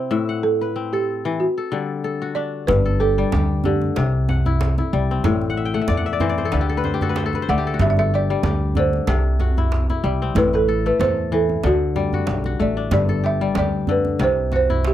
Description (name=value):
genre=west african traditional, West African string and xylophone music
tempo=94 BPM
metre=4/4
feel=swing 55% on 16ths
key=G major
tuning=A4 = 438 Hz
part: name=balafon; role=melody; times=0.0-14.9 s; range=F#4 to F#5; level=-22 LUFS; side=right 3 dB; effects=none
part: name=kora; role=arpeggios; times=0.0-14.9 s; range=G2 to G5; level=-22 LUFS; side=left 6 dB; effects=none
part: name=upright bass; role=bass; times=2.7-14.9 s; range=G1 to E2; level=-22 LUFS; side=equal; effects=none
part: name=djembe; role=percussion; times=2.7-14.9 s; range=none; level=-26 LUFS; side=right 3 dB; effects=none
room=little or no reverb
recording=dry, close 1970s-style studio recording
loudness=-18 LUFS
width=side -12 dB against mid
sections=0.0-2.7 A section; 2.7-14.9 B section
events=kora fill 5.5-7.8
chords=0.1 Am; 1.4 D; 2.7 G5; 4.0 C; 5.2 Am; 6.5 D; 7.8 G5; 9.1 C; 10.4 Am; 11.6 D; 12.9 G5; 14.2 C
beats=| 0.11 0.76 1.40 2.04 | 2.68 3.32 3.96 4.60 | 5.24 5.88 6.52 7.16 | 7.80 8.44 9.08 9.72 | 10.36 11.00 11.64 12.28 | 12.92 13.56 14.20 14.84